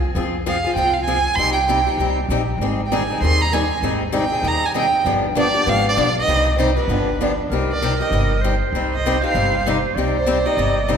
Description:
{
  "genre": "acoustic string swing (jazz manouche)",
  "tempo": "196 BPM",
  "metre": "4/4",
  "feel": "swing 58% on 8ths",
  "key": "C minor",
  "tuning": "A4 = 440 Hz",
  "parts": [
    { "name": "upright bass", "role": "bass", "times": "0.0-11.0 s", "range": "G1 to F2", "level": "-23 LUFS", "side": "equal", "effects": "none" },
    { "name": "picked old ladder-braced acoustic guitar", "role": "accompaniment", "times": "0.2-7.3 s", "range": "C3 to Ab4", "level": "-27 LUFS", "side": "right 4 dB", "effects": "none" },
    { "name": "picked steel-string acoustic guitar", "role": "accompaniment", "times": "0.2-11.0 s", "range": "C3 to Ab4", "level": "-22 LUFS", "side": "left 5 dB", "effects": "none" },
    { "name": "warm violin", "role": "melody", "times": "0.5-10.9 s", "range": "B4 to C6", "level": "-21 LUFS", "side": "right 3 dB", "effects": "none" },
    { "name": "growling clarinet", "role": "second line", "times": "7.5-11.0 s", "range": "Bb4 to D5", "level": "-23 LUFS", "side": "right 4 dB", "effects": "none" }
  ],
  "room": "wet church reverb, RT60 3.5 s",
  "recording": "recorded in a church or concert hall",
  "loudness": "-16 LUFS",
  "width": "side -7 dB against mid",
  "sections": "0.0-7.5 A section; 7.5-11.0 B section",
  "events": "violin solo 7.5-11.0",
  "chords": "0.0 Fm; 1.4 Cm; 2.6 Abmaj7; 5.1 G7; 6.3 Cm; 6.9 G7; 7.5 Cm",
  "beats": "| 0.15 0.46 0.76 1.07 | 1.38 1.68 1.99 2.29 | 2.60 2.91 3.21 3.52 | 3.83 4.13 4.44 4.75 | 5.05 5.36 5.67 5.97 | 6.28 6.58 6.89 7.20 | 7.50 7.81 8.12 8.43 | 8.73 9.04 9.35 9.65 | 9.96 10.27 10.57 10.88"
}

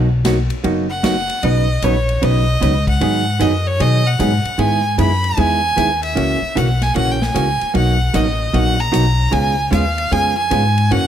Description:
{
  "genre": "country, western swing",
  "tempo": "152 BPM",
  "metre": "4/4",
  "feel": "swing 65% on 8ths",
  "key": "B major",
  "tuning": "A4 = 440 Hz",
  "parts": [
    { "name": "vintage hollow-body jazz guitar", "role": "accompaniment", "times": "0.0-11.1 s", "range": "B2 to B4", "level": "-19 LUFS", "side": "right 2 dB", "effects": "none" },
    { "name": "upright bass", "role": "bass", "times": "0.0-11.1 s", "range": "F#1 to B2", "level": "-18 LUFS", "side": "left 1 dB", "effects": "none" },
    { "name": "swinging big-band drum kit", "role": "drums", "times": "0.2-11.0 s", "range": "hi-hat, kick drum, ride cymbal, snare drum", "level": "-28 LUFS", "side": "left 2 dB", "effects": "none" },
    { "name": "clear fiddle", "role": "melody", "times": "0.9-11.1 s", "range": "C#5 to B5", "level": "-19 LUFS", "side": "right 1 dB", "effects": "none" }
  ],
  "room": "light reverb",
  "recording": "none",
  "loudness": "-14 LUFS",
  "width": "side -10 dB against mid",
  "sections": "0.0-1.4 A section; 1.4-11.1 B section",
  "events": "fiddle solo 0.0-1.4",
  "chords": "0.0 Bmaj7; 1.4 Badd9; 3.0 G#m7; 4.6 Emaj7; 6.2 F#7; 7.7 Bmaj7; 9.3 C#7",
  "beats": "0.24 0.64 1.03 | 1.43 1.82 2.22 2.61 | 3.00 3.40 3.79 4.19 | 4.58 4.98 5.38 5.77 | 6.17 6.56 6.96 7.35 | 7.75 8.14 8.54 8.93 | 9.32 9.72 10.12 10.51 | 10.90"
}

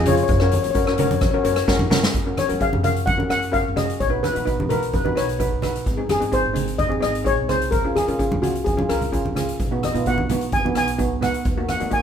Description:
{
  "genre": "calypso",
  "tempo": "129 BPM",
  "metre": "4/4",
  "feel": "straight",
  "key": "F# major",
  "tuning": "A4 = 436 Hz",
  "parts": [
    { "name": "steel pan", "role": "melody", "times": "0.0-12.0 s", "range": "E#4 to G#5", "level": "-23 LUFS", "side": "left 4 dB", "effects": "none" },
    { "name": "upright bass", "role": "bass", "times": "0.0-12.0 s", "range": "G#1 to F#3", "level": "-28 LUFS", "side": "equal", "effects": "none" },
    { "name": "steel pan", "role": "accompaniment", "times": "0.1-12.0 s", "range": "A#3 to B4", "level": "-24 LUFS", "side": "right 1 dB", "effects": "none" },
    { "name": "street-band drum kit", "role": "drums", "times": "0.1-12.0 s", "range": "hi-hat, kick drum, rim click, snare drum", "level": "-25 LUFS", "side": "equal", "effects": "none" },
    { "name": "congas", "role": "percussion", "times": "0.1-11.8 s", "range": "none", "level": "-27 LUFS", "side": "right 2 dB", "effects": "none" }
  ],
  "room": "wet studio reverb, RT60 0.5 s",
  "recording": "minimal, uncompressed stereo recording",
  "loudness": "-18 LUFS",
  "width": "side -8 dB against mid",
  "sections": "0.0-2.1 A section; 2.1-12.0 B section",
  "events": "drum fill 1.7-2.1",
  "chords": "0.3 F#; 2.1 F#add9; 4.0 B; 5.9 G#; 7.7 C#; 9.6 B; 11.5 D#m",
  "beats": "| 0.30 0.76 1.22 1.69 | 2.15 2.61 3.08 3.54 | 4.01 4.47 4.94 5.40 | 5.87 6.33 6.80 7.26 | 7.73 8.20 8.66 9.13 | 9.59 10.06 10.52 10.99 | 11.45 11.92"
}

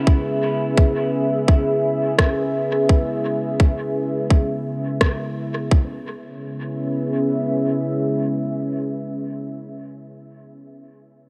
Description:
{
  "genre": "ambient dub",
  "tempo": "85 BPM",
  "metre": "4/4",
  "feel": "swing 56% on 16ths",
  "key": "C# minor",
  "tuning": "A4 = 440 Hz",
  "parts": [
    { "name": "deep dark ambient pad", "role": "sustained chords", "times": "0.0-9.3 s", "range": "C#4 to E5", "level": "-24 LUFS", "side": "equal", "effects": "chorus, built-in reverb" },
    { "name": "electronic kick drum", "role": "drums", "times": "0.1-5.9 s", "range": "none", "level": "-17 LUFS", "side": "equal", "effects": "overdrive" },
    { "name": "electronic rim click", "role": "drums", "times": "2.2-5.2 s", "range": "none", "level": "-27 LUFS", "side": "equal", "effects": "overdrive, dub echo" }
  ],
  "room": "light reverb, digital ambience",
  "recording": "none",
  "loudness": "-21 LUFS",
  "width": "mono",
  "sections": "0.0-5.7 A section; 5.7-8.5 B section",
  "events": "none",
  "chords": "0.0 C#m7",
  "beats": "| 0.07 0.77 1.48 2.19 | 2.89 3.60 4.30 5.01 | 5.71 6.42 7.13 7.83"
}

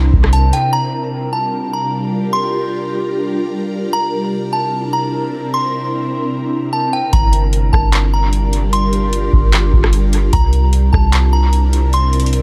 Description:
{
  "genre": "hip hop, atmospheric cloud-rap",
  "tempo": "150 BPM",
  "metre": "4/4",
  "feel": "half-time",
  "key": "G dorian",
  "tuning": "A4 = 440 Hz",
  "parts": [
    { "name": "delicate synth tine bell", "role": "melody", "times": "0.0-12.4 s", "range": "G5 to C6", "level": "-23 LUFS", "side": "equal", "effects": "chorus, dub echo" },
    { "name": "ethereal airy pad", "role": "sustained chords", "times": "0.0-12.4 s", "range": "C3 to Bb4", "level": "-22 LUFS", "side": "equal", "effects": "ensemble chorus, built-in reverb, phaser, sidechain pumping" },
    { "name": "soft 808-style bass", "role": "bass", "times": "0.0-0.5, 7.1-12.4 s", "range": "G1 to C2", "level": "-16 LUFS", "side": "equal", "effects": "none" },
    { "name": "booming analog drum machine", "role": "drums", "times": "0.1-0.6, 7.1-12.4 s", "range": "handclaps, hi-hat, kick drum, rim click", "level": "-18 LUFS", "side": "equal", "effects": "dub echo" }
  ],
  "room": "digital ambience",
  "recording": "echo-heavy mix",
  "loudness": "-16 LUFS",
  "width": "mono",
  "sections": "0.7-12.4 A section",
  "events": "none",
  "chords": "0.0 C7; 0.7 Gm7; 3.9 C7; 7.1 Gm7; 10.3 C7",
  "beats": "0.33 | 0.73 1.13 1.53 1.93 | 2.33 2.73 3.13 3.53 | 3.93 4.33 4.73 5.13 | 5.53 5.93 6.33 6.73 | 7.13 7.53 7.93 8.33 | 8.73 9.13 9.53 9.93 | 10.33 10.73 11.13 11.53 | 11.93 12.33"
}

